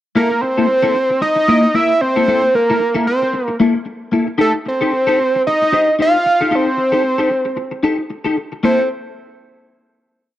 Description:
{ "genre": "funk", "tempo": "113 BPM", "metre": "4/4", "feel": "swing 56% on 16ths", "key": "unclear", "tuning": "A4 = 440 Hz", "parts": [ { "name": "fat analog lead", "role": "melody", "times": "0.2-8.9 s", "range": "A4 to F5", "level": "-14 LUFS", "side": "right 1 dB", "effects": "none" }, { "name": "clean electric guitar", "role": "accompaniment", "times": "0.2-8.8 s", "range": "Bb3 to C5", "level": "-18 LUFS", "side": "left 2 dB", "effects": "ensemble chorus" } ], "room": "moderate spring reverb, RT60 1.9 s", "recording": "dark, warm production", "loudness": "-13 LUFS", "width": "side -13 dB against mid", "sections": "0.1-8.6 groove; 8.6-10.4 final chord", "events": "none", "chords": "0.1 C6; 4.4 F9; 8.6 Bbsus2", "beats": "| 0.15 0.68 1.21 1.74 | 2.27 2.80 3.33 3.86 | 4.39 4.92 5.45 5.98 | 6.51 7.04 7.58 8.11 | 8.63" }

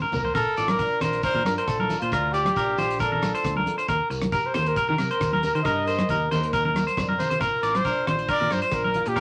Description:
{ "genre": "highlife guitar band", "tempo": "136 BPM", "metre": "4/4", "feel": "straight", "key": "Bb major", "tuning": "A4 = 439 Hz", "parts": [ { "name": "nylon-string guitar", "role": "accompaniment", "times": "0.0-9.2 s", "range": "F2 to Bb4", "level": "-36 LUFS", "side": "equal", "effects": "none" }, { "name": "clean electric guitar", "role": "arpeggios", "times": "0.0-9.2 s", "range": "Bb4 to D5", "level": "-28 LUFS", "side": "equal", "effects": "none" }, { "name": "damped 70s drum kit", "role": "drums", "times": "0.0-9.2 s", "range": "hi-hat, kick drum, rim click, toms", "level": "-36 LUFS", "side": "equal", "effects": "none" }, { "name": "shekere", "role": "percussion", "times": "0.0-9.2 s", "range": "none", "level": "-41 LUFS", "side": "equal", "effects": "none" }, { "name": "warm trumpet", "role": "melody", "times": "0.1-9.2 s", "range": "F4 to Eb5", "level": "-29 LUFS", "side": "equal", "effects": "none" }, { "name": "fingered electric bass", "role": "bass", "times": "0.1-9.2 s", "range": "A1 to Eb3", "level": "-33 LUFS", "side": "equal", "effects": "none" }, { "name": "congas", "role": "percussion", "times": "0.1-9.1 s", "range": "none", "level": "-32 LUFS", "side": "equal", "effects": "none" } ], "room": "moderate studio ambience, RT60 0.5 s", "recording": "vinyl crackle", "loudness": "-24 LUFS", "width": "mono", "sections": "0.4-9.2 A section", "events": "drum fill 0.0-0.4, 7.0-7.4", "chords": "0.4 Bbmaj7; 3.9 Eb; 7.4 Bb", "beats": "| 0.35 0.80 1.24 1.68 | 2.12 2.57 3.01 3.45 | 3.89 4.33 4.78 5.22 | 5.66 6.10 6.54 6.98 | 7.42 7.85 8.29 8.73 | 9.17" }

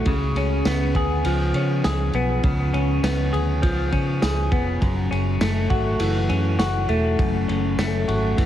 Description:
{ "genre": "dream pop", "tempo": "101 BPM", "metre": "4/4", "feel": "straight", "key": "F# minor", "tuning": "A4 = 441 Hz", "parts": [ { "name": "semi-hollow electric guitar", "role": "arpeggios", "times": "0.0-8.5 s", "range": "F#2 to G#4", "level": "-23 LUFS", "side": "left 1 dB", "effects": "wide subtle chorus, digital delay" }, { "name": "vintage muted fingered electric bass", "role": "bass", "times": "0.0-8.5 s", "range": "E1 to C#3", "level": "-23 LUFS", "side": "equal", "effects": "none" }, { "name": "vintage drum kit", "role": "drums", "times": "0.1-8.5 s", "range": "kick drum, ride cymbal, snare drum, tambourine", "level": "-26 LUFS", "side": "equal", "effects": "none" } ], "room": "light reverb, small room ambience", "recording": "heavily compressed radio sound, multiband compression", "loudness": "-19 LUFS", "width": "side -11 dB against mid", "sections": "0.0-8.5 A section", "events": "none", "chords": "0.1 C#7; 4.8 F#m7", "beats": "| 0.06 0.66 1.25 1.85 | 2.44 3.04 3.63 4.22 | 4.82 5.41 6.00 6.60 | 7.19 7.79 8.38" }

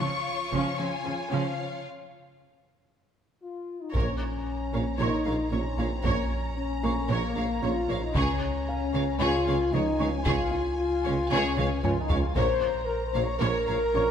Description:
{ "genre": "cinematic, hybrid orchestral and electronic film score", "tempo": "114 BPM", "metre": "4/4", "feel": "straight", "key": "Bb minor", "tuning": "A4 = 440 Hz", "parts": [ { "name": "dark symphonic violin section", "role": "melody", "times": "0.0-14.1 s", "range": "F5 to Db6", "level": "-38 LUFS", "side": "left 2 dB", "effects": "none" }, { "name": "rich studio violin section", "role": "second line", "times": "0.0-14.0 s", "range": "F4 to F5", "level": "-35 LUFS", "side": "left 2 dB", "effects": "none" }, { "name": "warm symphonic viola section", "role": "accompaniment", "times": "0.0-14.0 s", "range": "F3 to Db5", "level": "-35 LUFS", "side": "right 2 dB", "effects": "none" }, { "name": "soft round pluck", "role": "arpeggios", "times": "0.0-14.1 s", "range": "Db3 to Bb4", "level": "-38 LUFS", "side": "right 2 dB", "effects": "chorus, ping-pong delay" }, { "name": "rich symphonic cello section", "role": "bass", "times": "0.0-14.0 s", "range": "Bb2 to Db3", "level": "-34 LUFS", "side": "right 3 dB", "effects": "none" }, { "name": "felt-muted upright piano", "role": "texture", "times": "0.0-14.1 s", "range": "F4 to Eb6", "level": "-40 LUFS", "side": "equal", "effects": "none" }, { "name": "taiko ensemble", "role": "drums", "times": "0.5-0.8, 3.9-12.9 s", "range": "none", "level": "-31 LUFS", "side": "equal", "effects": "none" }, { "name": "mellow French horn section", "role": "sustained chords", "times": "3.4-14.1 s", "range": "Bb3 to Db5", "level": "-29 LUFS", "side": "left 3 dB", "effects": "none" }, { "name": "clear symphonic double bass section", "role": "bass", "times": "3.9-14.0 s", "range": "Bb1 to Db2", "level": "-35 LUFS", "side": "right 3 dB", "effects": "none" }, { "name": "clear tuba", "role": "bass", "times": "3.9-14.0 s", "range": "Bb1 to Db2", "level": "-36 LUFS", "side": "right 3 dB", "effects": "none" }, { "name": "warm sub bass", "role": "bass", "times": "3.9-14.1 s", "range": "Bb1 to Db2", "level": "-34 LUFS", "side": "equal", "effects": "none" } ], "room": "moderate scoring stage reverb, RT60 1.9 s", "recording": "none", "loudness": "-25 LUFS", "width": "side -8 dB against mid", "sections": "0.0-3.9 A section; 3.9-14.1 B section", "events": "break 1.8-3.9; drum fill 11.6-12.4", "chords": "0.0 Db; 3.9 Bbm; 8.2 Db; 12.4 Bbm", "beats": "0.26 0.79 1.31 | 1.84 2.37 2.89 3.42 | 3.95 4.47 5.00 5.53 | 6.05 6.58 7.10 7.63 | 8.16 8.68 9.21 9.73 | 10.26 10.79 11.31 11.84 | 12.37 12.89 13.42 13.95" }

